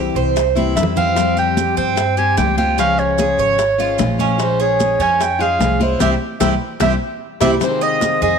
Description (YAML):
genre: latin, Cuban son and guajira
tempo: 149 BPM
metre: 4/4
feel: straight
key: F minor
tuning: A4 = 439 Hz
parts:
  - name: warm clarinet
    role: melody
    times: 0.0-8.4 s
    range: C5 to Ab5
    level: -18 LUFS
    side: right 1 dB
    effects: none
  - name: picked steel-string acoustic guitar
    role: accompaniment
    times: 0.0-8.4 s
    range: C3 to G4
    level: -22 LUFS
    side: left 11 dB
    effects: none
  - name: Cuban tres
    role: arpeggios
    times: 0.0-8.4 s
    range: C4 to Eb5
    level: -21 LUFS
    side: right 10 dB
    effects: none
  - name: upright bass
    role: bass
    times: 0.0-8.4 s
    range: Ab1 to G2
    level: -22 LUFS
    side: equal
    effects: none
  - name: bongos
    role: percussion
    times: 0.2-8.4 s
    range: none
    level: -27 LUFS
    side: left 12 dB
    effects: none
  - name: congas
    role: percussion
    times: 0.2-8.4 s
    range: none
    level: -24 LUFS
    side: right 1 dB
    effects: none
  - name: maracas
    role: percussion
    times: 0.2-8.4 s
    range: none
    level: -32 LUFS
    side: right 15 dB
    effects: none
room: moderate echo chamber reverb, RT60 1.4 s, studio reverb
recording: 1960s-style stereo with parts hard left and right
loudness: -14 LUFS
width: side -6 dB against mid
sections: 0.0-7.6 A section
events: drum fill 0.6-1.2, 6.8-7.6; band accent 6.0-7.6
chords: 0.0 C; 1.2 Fsus2; 2.8 Db; 4.4 Bbm7; 6.0 C; 7.6 Fm7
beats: 0.37 0.77 | 1.18 1.58 1.98 2.38 | 2.79 3.19 3.59 3.99 | 4.40 4.80 5.20 5.60 | 6.01 6.41 6.81 7.21 | 7.62 8.02